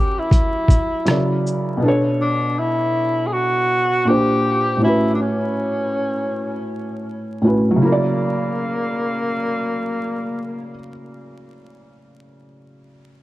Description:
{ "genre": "lo-fi hip hop", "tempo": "80 BPM", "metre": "4/4", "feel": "swing 57% on 16ths", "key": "unclear", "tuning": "A4 = 437 Hz", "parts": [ { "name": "breathy tenor saxophone", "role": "melody", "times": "0.0-10.8 s", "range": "A#3 to G#4", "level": "-22 LUFS", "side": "equal", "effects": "low-pass filter, analog delay" }, { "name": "felt-muted upright piano", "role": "accompaniment", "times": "0.0-13.2 s", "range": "A2 to D5", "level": "-20 LUFS", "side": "equal", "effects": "low-pass filter" }, { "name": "boom bap sampler-style drum kit", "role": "drums", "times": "0.3-1.7 s", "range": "hi-hat, kick drum, rim click, shaker", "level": "-15 LUFS", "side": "equal", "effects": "vintage 12-bit sampler grit" } ], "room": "moderate studio ambience, RT60 0.5 s", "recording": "vinyl crackle", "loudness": "-17 LUFS", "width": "side -16 dB against mid", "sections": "0.0-7.8 A section; 7.8-10.8 B section", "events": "none", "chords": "0.0 F#7b9; 1.1 F#7b13; 1.8 Bm7; 4.1 A#69; 4.8 A69; 7.8 F#7b13" }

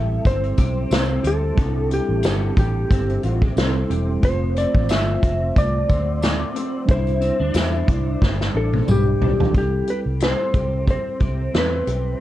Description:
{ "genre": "indie pop, bedroom pop", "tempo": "90 BPM", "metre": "4/4", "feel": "swing 55% on 16ths", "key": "C major", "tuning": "A4 = 442 Hz", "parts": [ { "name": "clean lap steel guitar", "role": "melody", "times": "0.0-12.2 s", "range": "G4 to E5", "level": "-25 LUFS", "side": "left 1 dB", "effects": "lush chorus, plate reverb" }, { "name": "electric guitar through a small old amp", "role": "accompaniment", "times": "0.0-12.2 s", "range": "C3 to A4", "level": "-29 LUFS", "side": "left 1 dB", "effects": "ensemble chorus, vibrato effect" }, { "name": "mellow tine electric piano", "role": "accompaniment", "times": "0.0-12.2 s", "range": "G3 to C5", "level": "-29 LUFS", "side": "right 2 dB", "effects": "fast stereo tremolo, cassette tape" }, { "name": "vintage muted fingered electric bass", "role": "bass", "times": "0.0-12.1 s", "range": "E1 to E2", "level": "-23 LUFS", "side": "equal", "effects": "none" }, { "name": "unplugged drum kit", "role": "drums", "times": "0.3-12.0 s", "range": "hi-hat, kick drum, snare drum, toms", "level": "-20 LUFS", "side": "equal", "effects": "none" }, { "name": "tambourine", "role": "percussion", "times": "0.9-9.0 s", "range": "none", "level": "-41 LUFS", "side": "right 4 dB", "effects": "none" } ], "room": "light reverb", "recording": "cassette tape", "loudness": "-18 LUFS", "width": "side -14 dB against mid", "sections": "0.0-9.5 A section; 9.5-12.2 B section", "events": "drum fill 8.2-9.5", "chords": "0.0 C6; 4.2 F; 6.9 Cadd9; 9.5 C6" }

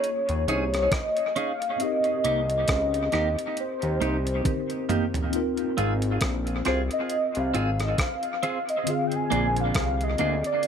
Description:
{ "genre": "lovers rock reggae", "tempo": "68 BPM", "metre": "4/4", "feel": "swing 57% on 16ths", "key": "Ab major", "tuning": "A4 = 440 Hz", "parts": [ { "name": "warm velvety synth lead", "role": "melody", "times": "0.0-10.7 s", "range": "C5 to Ab5", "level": "-27 LUFS", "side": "equal", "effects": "chorus, dub echo" }, { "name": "tine electric piano", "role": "accompaniment", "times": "0.0-10.7 s", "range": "D3 to Bb4", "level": "-32 LUFS", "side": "left 2 dB", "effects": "medium stereo tremolo, dub echo" }, { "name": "clean 12-bit digital drum machine", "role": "drums", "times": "0.0-10.7 s", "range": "hi-hat, kick drum, rim click, toms", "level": "-30 LUFS", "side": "equal", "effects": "dub echo" }, { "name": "fat analog bass", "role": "bass", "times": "0.3-10.4 s", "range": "Ab1 to Eb2", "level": "-27 LUFS", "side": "equal", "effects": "none" }, { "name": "clean electric guitar", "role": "stabs", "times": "0.5-10.3 s", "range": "Bb3 to Ab4", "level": "-30 LUFS", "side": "right 3 dB", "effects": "phaser, dub echo" } ], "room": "moderate studio reverb, RT60 0.6 s", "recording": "none", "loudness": "-23 LUFS", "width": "side -7 dB against mid", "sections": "0.0-10.7 A section", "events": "drum fill 4.4-5.3", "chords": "0.0 Eb7sus4; 1.8 Cm7; 5.3 Ab6; 8.9 Bb7" }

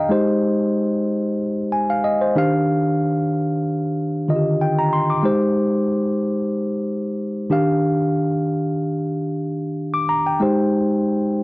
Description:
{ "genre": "soul", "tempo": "93 BPM", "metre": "4/4", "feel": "swing 54% on 16ths", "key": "Eb major", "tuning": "A4 = 440 Hz", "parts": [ { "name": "tine electric piano", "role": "solo", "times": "0.0-11.4 s", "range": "D3 to D6", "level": "-18 LUFS", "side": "equal", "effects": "none" } ], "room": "light reverb", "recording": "dry, close 1970s-style studio recording", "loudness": "-18 LUFS", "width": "side -21 dB against mid", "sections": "0.0-11.4 A section", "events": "none", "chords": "0.1 Abmaj7; 2.4 Ebmaj9; 5.3 Abmaj7; 7.5 Ebmaj9; 10.4 Abmaj7" }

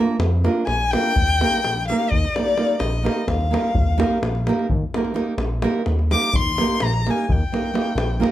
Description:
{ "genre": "balkan folk, Balkan wedding band", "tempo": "254 BPM (eighths)", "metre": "11/8", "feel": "straight", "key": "Eb major", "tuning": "A4 = 440 Hz", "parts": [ { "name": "nylon-string guitar", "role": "accompaniment", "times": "0.0-8.3 s", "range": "Bb3 to Bb4", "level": "-22 LUFS", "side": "right 3 dB", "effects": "none" }, { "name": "chorused synth bass", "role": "bass", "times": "0.2-8.2 s", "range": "Bb1 to F2", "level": "-22 LUFS", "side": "equal", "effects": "none" }, { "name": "davul", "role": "percussion", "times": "0.2-8.3 s", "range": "none", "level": "-25 LUFS", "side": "left 2 dB", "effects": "none" }, { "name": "warm violin", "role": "melody", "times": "0.7-8.3 s", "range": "D5 to D6", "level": "-23 LUFS", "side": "left 3 dB", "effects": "none" } ], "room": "moderate studio reverb, RT60 0.6 s", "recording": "none", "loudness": "-18 LUFS", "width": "side -13 dB against mid", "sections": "0.0-8.3 A section", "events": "violin solo 0.0-8.3", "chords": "0.0 Bb; 1.2 Eb" }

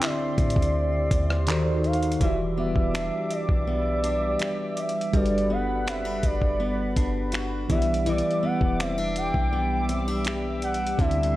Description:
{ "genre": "contemporary R&B", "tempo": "82 BPM", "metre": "4/4", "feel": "straight", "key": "E minor", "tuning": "A4 = 443 Hz", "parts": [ { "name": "gliding portamento lead", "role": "melody", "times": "0.0-11.4 s", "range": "D5 to G5", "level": "-29 LUFS", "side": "equal", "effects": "chorus" }, { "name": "mellow tine electric piano", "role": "accompaniment", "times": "0.0-11.4 s", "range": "D3 to D5", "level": "-31 LUFS", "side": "right 1 dB", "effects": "medium stereo tremolo" }, { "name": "chorused pulse-width pad", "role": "sustained chords", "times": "0.0-11.4 s", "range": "G3 to D6", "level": "-33 LUFS", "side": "right 2 dB", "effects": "none" }, { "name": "fingerpicked steel-string acoustic guitar", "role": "arpeggios", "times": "0.0-11.4 s", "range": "D3 to G4", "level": "-30 LUFS", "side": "left 2 dB", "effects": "none" }, { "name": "dusty soul sampler-style drum kit", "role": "drums", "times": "0.0-11.3 s", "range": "finger snaps, handclaps, hi-hat, kick drum, rim click", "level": "-26 LUFS", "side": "equal", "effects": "none" }, { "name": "clean 808-style bass", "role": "bass", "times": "0.4-11.4 s", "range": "E1 to A2", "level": "-29 LUFS", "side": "equal", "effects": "transformer saturation" } ], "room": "light reverb", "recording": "dry, gritty hardware recording", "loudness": "-22 LUFS", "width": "side -16 dB against mid", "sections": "0.0-2.2 A section; 2.2-11.4 B section", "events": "none", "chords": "0.0 D9sus4; 1.5 D#dim7; 2.2 Em7; 5.1 Gmaj7; 7.7 Em7" }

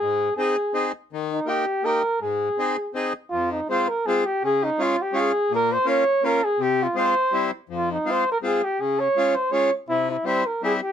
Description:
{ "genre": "alpine folk, alpine dance band", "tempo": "164 BPM", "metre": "3/4", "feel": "swing 54% on 8ths", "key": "Ab major, F minor from 3.3 s", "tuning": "A4 = 437 Hz", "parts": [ { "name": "mellow flugelhorn", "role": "melody", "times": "0.0-10.9 s", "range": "Eb4 to Db5", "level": "-22 LUFS", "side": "equal", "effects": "none" }, { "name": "accordion", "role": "accompaniment", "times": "0.0-10.8 s", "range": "F2 to Ab4", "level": "-25 LUFS", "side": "left 2 dB", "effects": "none" } ], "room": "light reverb", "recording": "close, detailed microphones", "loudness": "-20 LUFS", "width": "side -9 dB against mid", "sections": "0.0-3.3 A section; 3.3-10.9 B section", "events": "none", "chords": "0.0 Ab; 1.1 Eb; 2.2 Ab; 3.3 Fm; 4.4 Db; 5.5 Bbm; 6.6 Fm/C; 7.3 C; 7.7 Fm; 8.8 Db; 9.9 C" }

